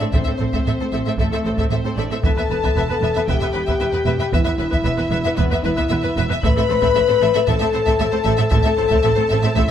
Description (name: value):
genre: cinematic, epic orchestral film score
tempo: 115 BPM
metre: 4/4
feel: straight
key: A minor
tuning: A4 = 440 Hz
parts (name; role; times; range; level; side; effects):
- warm symphonic violin section; melody; 0.0-9.7 s; A4 to B5; -29 LUFS; left 2 dB; none
- rich symphonic violin section; second line; 0.0-9.7 s; B4 to E5; -26 LUFS; left 2 dB; none
- rich symphonic viola section; accompaniment; 0.0-9.6 s; B3 to B4; -27 LUFS; right 2 dB; none
- mellow French horn section; sustained chords; 0.0-9.7 s; A3 to B4; -21 LUFS; left 5 dB; none
- warm symphonic cello section; bass; 0.0-9.7 s; E2 to A2; -25 LUFS; right 3 dB; none
- rich symphonic double bass section; bass; 0.1-9.6 s; E1 to A1; -25 LUFS; right 4 dB; none
- taiko ensemble; drums; 0.1-9.7 s; none; -22 LUFS; equal; none
room: moderate concert hall reverb, RT60 2.3 s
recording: close, detailed microphones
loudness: -16 LUFS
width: side -9 dB against mid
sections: 0.0-9.7 A section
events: none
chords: 0.0 Am; 2.2 Em; 6.4 Am